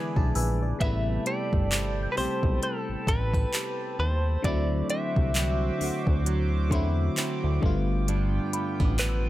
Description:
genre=contemporary R&B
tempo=66 BPM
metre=4/4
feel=swing 58% on 16ths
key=A minor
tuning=A4 = 440 Hz
part: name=FM electric piano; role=accompaniment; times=0.0-9.3 s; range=C3 to A5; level=-32 LUFS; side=left 2 dB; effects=chorus
part: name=chorused pulse-width pad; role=sustained chords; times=0.0-9.3 s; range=B3 to D6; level=-37 LUFS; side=right 2 dB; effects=none
part: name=flamenco guitar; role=arpeggios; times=0.0-9.3 s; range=G2 to B4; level=-36 LUFS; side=right 5 dB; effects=none
part: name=small celesta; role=texture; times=0.0-9.3 s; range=B5 to G6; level=-41 LUFS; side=left 1 dB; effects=ping-pong delay
part: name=fat analog bass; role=bass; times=0.2-9.3 s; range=G1 to E2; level=-27 LUFS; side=equal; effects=none
part: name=smooth R&B drum kit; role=drums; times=0.2-9.2 s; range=handclaps, hi-hat, kick drum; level=-28 LUFS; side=equal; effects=none
part: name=direct-recorded clean electric guitar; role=melody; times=0.8-9.3 s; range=A4 to E5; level=-32 LUFS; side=equal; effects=tremolo, ping-pong delay
room=little or no reverb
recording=none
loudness=-24 LUFS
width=side -15 dB against mid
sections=0.0-9.3 A section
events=FM electric piano fill 0.0-0.8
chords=0.0 E7; 0.8 Am9; 4.4 D9; 7.6 G7

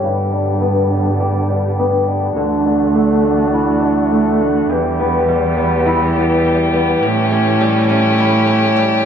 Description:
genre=folktronica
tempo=103 BPM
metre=4/4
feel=straight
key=D major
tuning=A4 = 439 Hz
part: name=warm string quartet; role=sustained chords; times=0.0-9.1 s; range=D3 to G4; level=-19 LUFS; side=equal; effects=none
part: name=picked old ladder-braced acoustic guitar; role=arpeggios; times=0.0-9.1 s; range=E2 to G4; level=-16 LUFS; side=equal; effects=low-pass filter, digital delay
part: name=dark cello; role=bass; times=0.0-9.1 s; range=D2 to A2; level=-18 LUFS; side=right 1 dB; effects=none
room=light reverb, small room ambience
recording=low-pass filter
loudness=-13 LUFS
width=side -8 dB against mid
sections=0.0-9.1 A section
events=filter sweep on steel-string acoustic guitar 0.0-9.1; filter sweep 0.0-9.1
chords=0.0 G; 2.4 Dadd9; 4.7 Em; 7.0 A7

